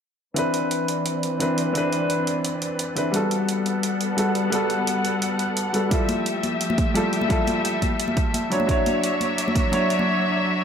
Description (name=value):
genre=liquid drum and bass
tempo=173 BPM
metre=4/4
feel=straight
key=C major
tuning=A4 = 440 Hz
part: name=warm baby grand piano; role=accompaniment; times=0.3-10.6 s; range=E3 to C#5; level=-23 LUFS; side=left 1 dB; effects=low-pass filter, tape echo
part: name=muted studio string section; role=sustained chords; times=0.4-10.6 s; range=E3 to F#5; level=-26 LUFS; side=left 1 dB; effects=low-pass filter
part: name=electronic hi-hat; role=drums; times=0.4-10.0 s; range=none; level=-31 LUFS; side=right 3 dB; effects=none
part: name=electronic kick drum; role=drums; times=5.9-9.6 s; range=none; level=-23 LUFS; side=right 1 dB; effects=overdrive
part: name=congas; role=percussion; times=6.1-10.1 s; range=none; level=-28 LUFS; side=left 1 dB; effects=none
room=moderate plate reverb, RT60 1.5 s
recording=dreamy mix soaked in reverb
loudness=-20 LUFS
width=side -7 dB against mid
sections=0.4-10.6 A section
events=filter sweep on string section 0.4-10.6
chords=0.4 Cmaj9; 3.1 Gmaj9; 5.9 Fmaj9; 8.5 Dmaj9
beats=| 0.36 0.71 1.06 1.41 | 1.75 2.10 2.44 2.79 | 3.14 3.49 3.83 4.18 | 4.53 4.87 5.22 5.57 | 5.91 6.26 6.61 6.95 | 7.30 7.65 7.99 8.34 | 8.69 9.04 9.38 9.73 | 10.07 10.42